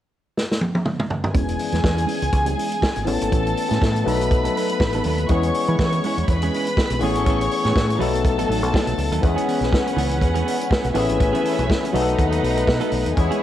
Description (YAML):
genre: disco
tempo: 122 BPM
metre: 4/4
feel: swing 56% on 16ths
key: E major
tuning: A4 = 440 Hz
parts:
  - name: vintage drum kit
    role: drums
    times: 0.4-13.4 s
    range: hi-hat, kick drum, snare drum, toms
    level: -23 LUFS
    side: equal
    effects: none
  - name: rich studio violin section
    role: second line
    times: 1.3-13.4 s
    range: C#4 to C#6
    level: -25 LUFS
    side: right 1 dB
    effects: cassette tape
  - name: barky tine electric piano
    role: accompaniment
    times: 1.3-13.4 s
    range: E3 to A4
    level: -24 LUFS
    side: left 8 dB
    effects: medium stereo tremolo, low-pass filter, cassette tape
  - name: clean electric guitar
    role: accompaniment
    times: 1.3-13.4 s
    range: E3 to B4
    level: -28 LUFS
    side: right 9 dB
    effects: low-pass filter, cassette tape
  - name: deep dub fingered electric bass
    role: bass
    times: 1.3-13.3 s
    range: E1 to E3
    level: -23 LUFS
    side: equal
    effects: none
room: light reverb, studio reverb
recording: home recording on cassette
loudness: -18 LUFS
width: side -12 dB against mid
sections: 0.0-1.4 A section; 1.4-9.2 B section; 9.2-13.4 C section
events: drum fill 0.4-1.4; filter sweep 1.4-9.2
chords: 0.0 N.C.; 1.4 E6; 3.1 Amaj9; 4.1 B7; 5.3 E6; 7.0 Amaj9; 8.0 B7; 9.2 E6; 11.0 Amaj9; 11.9 B7